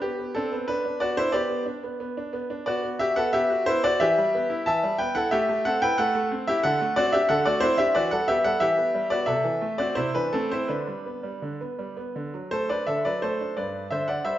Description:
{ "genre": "classical-period piano sonatina", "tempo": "82-92 BPM", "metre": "4/4", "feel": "rubato", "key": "G major", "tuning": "A4 = 440 Hz", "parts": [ { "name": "bright grand piano", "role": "solo", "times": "0.0-14.4 s", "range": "G2 to A5", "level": "-22 LUFS", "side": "equal", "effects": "none" } ], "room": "wet recital hall reverb, RT60 1.2 s", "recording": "nothing above 7.6 kHz", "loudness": "-22 LUFS", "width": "side -12 dB against mid", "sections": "0.0-13.6 A section", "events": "none", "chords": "0.0 G/B; 4.0 Em; 5.3 Am7; 6.6 D7; 8.0 Em; 9.3 Am/C; 10.7 G/D; 12.2 D; 13.6 G" }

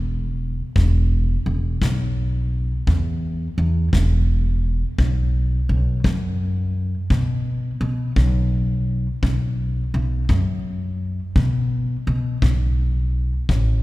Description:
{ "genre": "acoustic country blues, solo or duo", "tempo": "57 BPM (dotted quarters)", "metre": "12/8", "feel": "straight", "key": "unclear", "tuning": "A4 = 440 Hz", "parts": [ { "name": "upright bass", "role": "bass", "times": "0.0-13.8 s", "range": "E1 to B2", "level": "-19 LUFS", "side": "equal", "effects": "none" }, { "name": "kick drum", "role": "drums", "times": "0.8-13.7 s", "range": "none", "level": "-24 LUFS", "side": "left 1 dB", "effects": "none" } ], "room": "moderate church reverb, RT60 2.9 s", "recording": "recorded in a church or concert hall", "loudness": "-19 LUFS", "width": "side -18 dB against mid", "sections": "0.0-13.8 A section", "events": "none", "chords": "none" }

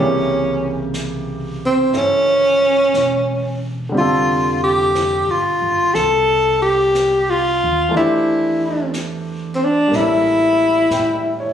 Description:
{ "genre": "jazz ballad", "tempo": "60 BPM", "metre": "4/4", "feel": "swing 69% on 8ths", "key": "unclear", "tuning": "A4 = 440 Hz", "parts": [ { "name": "breathy tenor saxophone", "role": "melody", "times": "0.0-11.5 s", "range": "C4 to A4", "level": "-15 LUFS", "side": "equal", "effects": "none" }, { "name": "clear baby grand piano", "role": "accompaniment", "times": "0.0-11.5 s", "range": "C3 to G5", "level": "-23 LUFS", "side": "equal", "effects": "none" }, { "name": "upright bass", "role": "bass", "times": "0.0-11.5 s", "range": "E1 to A2", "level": "-29 LUFS", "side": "equal", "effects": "none" }, { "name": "jazz brush drum kit", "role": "drums", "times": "0.9-11.5 s", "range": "brushed snare drum, hi-hat, snare drum", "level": "-33 LUFS", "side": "left 1 dB", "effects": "none" } ], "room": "light reverb", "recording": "recorded on a phone in the room, studio reverb, compression", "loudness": "-14 LUFS", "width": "side -9 dB against mid", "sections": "0.0-11.5 A section", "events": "none", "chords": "0.0 C7b9; 3.9 Fadd9; 7.9 C69/E; 9.9 A7b9" }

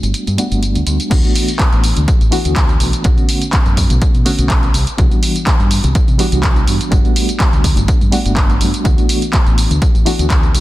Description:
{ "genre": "filtered disco house", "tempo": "124 BPM", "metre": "4/4", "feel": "swing 54% on 16ths", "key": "D major", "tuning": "A4 = 440 Hz", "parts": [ { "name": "reed electric piano", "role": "accompaniment", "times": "0.0-10.6 s", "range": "D3 to F#4", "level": "-20 LUFS", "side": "equal", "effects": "fast tremolo, phaser, sidechain pumping, low-pass filter" }, { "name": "deep dub fingered electric bass", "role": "bass", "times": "0.0-10.6 s", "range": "G1 to C3", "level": "-17 LUFS", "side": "equal", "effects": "tube saturation, sidechain pumping, low-pass filter" }, { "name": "punchy analog drum machine", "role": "drums", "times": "0.0-10.6 s", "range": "crash cymbal, handclaps, hi-hat, tambourine", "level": "-20 LUFS", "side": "equal", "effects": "sidechain pumping on hats, sidechain pumping on perc, sidechain pumping on cymbals" }, { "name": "electronic kick drum", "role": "drums", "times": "1.1-10.4 s", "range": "none", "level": "-13 LUFS", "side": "equal", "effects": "none" } ], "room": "digital ambience", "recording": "dense, heavily limited modern master", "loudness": "-11 LUFS", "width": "side -16 dB against mid", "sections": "0.0-1.1 A section; 1.1-10.6 B section", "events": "filter sweep 0.0-1.1; drop 1.1-10.6", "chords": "0.0 Gmaj9; 1.1 D6; 3.0 Bm9; 4.7 Cmaj9#11; 6.9 Gmaj9; 8.9 D6" }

